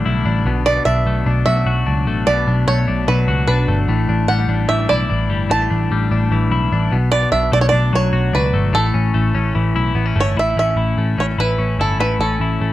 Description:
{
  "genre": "jangly indie pop",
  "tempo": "148 BPM",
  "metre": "4/4",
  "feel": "straight",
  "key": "A mixolydian",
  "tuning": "A4 = 439 Hz",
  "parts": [
    { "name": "bluegrass banjo", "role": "melody", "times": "0.0-12.7 s", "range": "A4 to A5", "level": "-19 LUFS", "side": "right 2 dB", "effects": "slapback echo" },
    { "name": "twelve-string electric guitar", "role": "arpeggios", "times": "0.0-12.7 s", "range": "A2 to F#4", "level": "-20 LUFS", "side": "left 4 dB", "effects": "slapback echo" },
    { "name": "vintage muted picked electric bass", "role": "bass", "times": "0.1-12.7 s", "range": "G1 to C#2", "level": "-18 LUFS", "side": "equal", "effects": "none" }
  ],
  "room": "light reverb",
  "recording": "none",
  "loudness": "-14 LUFS",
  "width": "side -14 dB against mid",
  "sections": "0.0-10.4 A section; 10.4-12.7 B section",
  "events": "none",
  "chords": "0.5 Bm7; 3.9 A7sus4; 6.9 Bm7; 8.7 A"
}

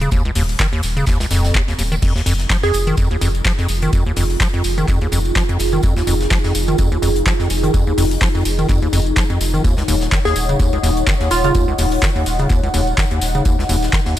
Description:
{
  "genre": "acid house",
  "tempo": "126 BPM",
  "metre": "4/4",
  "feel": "swing 56% on 16ths",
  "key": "F phrygian",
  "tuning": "A4 = 441 Hz",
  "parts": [
    { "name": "acid bass, square", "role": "riff", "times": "0.0-14.1 s", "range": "Db2 to F3", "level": "-20 LUFS", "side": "equal", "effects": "overdrive, cassette tape, digital delay" },
    { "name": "saturated sub bass", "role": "bass", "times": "0.0-14.2 s", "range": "Eb1 to F1", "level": "-20 LUFS", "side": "equal", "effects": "sidechain pumping" },
    { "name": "booming analog drum machine", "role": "drums", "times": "0.0-14.2 s", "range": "crash cymbal, handclaps, hi-hat", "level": "-23 LUFS", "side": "equal", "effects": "none" },
    { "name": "tight metal drum kit", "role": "drums", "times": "0.0-14.2 s", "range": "hi-hat, snare drum, tambourine", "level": "-32 LUFS", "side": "left 1 dB", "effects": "sidechain pumping on hats, high-pass filter on hats, high-pass filter on snare, sidechain pumping on perc, high-pass filter on perc, high-pass filter on room" },
    { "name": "tambourine", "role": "percussion", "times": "0.0-14.2 s", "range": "none", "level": "-31 LUFS", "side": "left 4 dB", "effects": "none" },
    { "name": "electronic kick drum", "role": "drums", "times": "0.1-14.0 s", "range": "none", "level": "-18 LUFS", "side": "equal", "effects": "none" },
    { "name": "dark analog pad", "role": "sustained chords", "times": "2.8-14.2 s", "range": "Eb4 to Gb5", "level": "-22 LUFS", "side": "equal", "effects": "chorus, sidechain pumping" },
    { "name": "glassy wavetable pluck", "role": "melody", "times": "2.6-3.0, 10.3-11.5 s", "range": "F4 to Ab4", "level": "-23 LUFS", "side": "right 2 dB", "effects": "chorus, dub echo" }
  ],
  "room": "small room ambience",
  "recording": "none",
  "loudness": "-14 LUFS",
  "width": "side -13 dB against mid",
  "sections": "0.0-14.2 A section",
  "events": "filter sweep on acid bass 0.0-14.2",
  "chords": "0.0 Eb7sus2; 2.0 Fm7; 9.6 Ebm7"
}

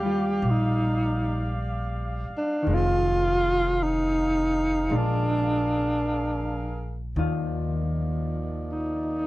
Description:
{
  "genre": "jazz ballad",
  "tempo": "53 BPM",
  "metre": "4/4",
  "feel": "swing 68% on 8ths",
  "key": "Eb major",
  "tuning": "A4 = 444 Hz",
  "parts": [
    { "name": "mellow alto saxophone", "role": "melody", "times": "0.0-9.3 s", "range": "D4 to G4", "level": "-25 LUFS", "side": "equal", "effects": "none" },
    { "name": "hollow-body jazz guitar", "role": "accompaniment", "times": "0.0-9.3 s", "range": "Eb3 to F4", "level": "-31 LUFS", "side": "left 2 dB", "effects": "none" },
    { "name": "mellow saxophone section", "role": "sustained chords", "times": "0.0-9.3 s", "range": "Eb3 to F5", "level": "-35 LUFS", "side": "right 1 dB", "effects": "none" },
    { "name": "upright bass", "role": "bass", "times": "0.0-9.3 s", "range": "F1 to Eb2", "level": "-28 LUFS", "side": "equal", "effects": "none" }
  ],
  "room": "little or no reverb",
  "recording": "dry, close 1970s-style studio recording, lossy compression artefacts",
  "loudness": "-23 LUFS",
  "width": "side -17 dB against mid",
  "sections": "0.0-7.2 A section; 7.2-9.3 B section",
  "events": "alto saxophone solo 7.2-9.3",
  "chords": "0.0 Ebmaj9; 2.7 Fm7; 4.9 Bb7; 7.2 Ebsus2"
}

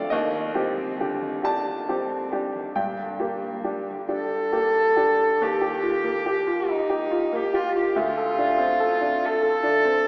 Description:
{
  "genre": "neoclassical piano and strings",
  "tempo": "46 BPM (dotted quarters)",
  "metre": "6/8",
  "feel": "rubato",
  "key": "unclear",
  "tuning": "A4 = 441 Hz",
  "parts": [
    { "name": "warm cello", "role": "second line", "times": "0.0-10.1 s", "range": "Bb2 to A4", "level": "-23 LUFS", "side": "equal", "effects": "none" },
    { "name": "bright grand piano", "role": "accompaniment", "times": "0.0-10.1 s", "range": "D2 to A5", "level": "-25 LUFS", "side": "equal", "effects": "none" }
  ],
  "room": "wet church reverb, RT60 3.1 s",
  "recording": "recorded in a church or concert hall, small speaker sound",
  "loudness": "-21 LUFS",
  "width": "side -35 dB against mid",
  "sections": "0.0-5.4 A section; 5.4-10.1 B section",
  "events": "none",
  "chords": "0.1 Cmadd9/Eb; 2.8 Gm; 5.4 Ebadd9; 8.0 Dm7"
}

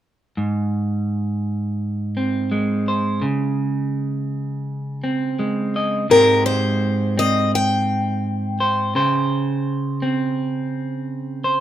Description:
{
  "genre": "folk",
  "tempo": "84 BPM",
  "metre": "4/4",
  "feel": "straight",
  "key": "Ab major",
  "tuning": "A4 = 439 Hz",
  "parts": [
    { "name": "electric guitar at the edge of break-up", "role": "accompaniment", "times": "0.4-11.6 s", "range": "Ab2 to Eb5", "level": "-20 LUFS", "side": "right 1 dB", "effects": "none" },
    { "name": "picked plugged-in acoustic archtop guitar", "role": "melody", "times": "6.1-8.6 s", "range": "Bb4 to G5", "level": "-18 LUFS", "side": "left 2 dB", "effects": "none" }
  ],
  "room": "moderate studio reverb, RT60 1.0 s",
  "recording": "minimal, uncompressed stereo recording",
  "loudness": "-19 LUFS",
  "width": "side -11 dB against mid",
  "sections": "0.4-6.1 A section; 6.1-11.6 B section",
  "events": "none",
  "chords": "0.4 Ab; 3.2 Db5; 6.1 Abmaj7; 8.9 N.C."
}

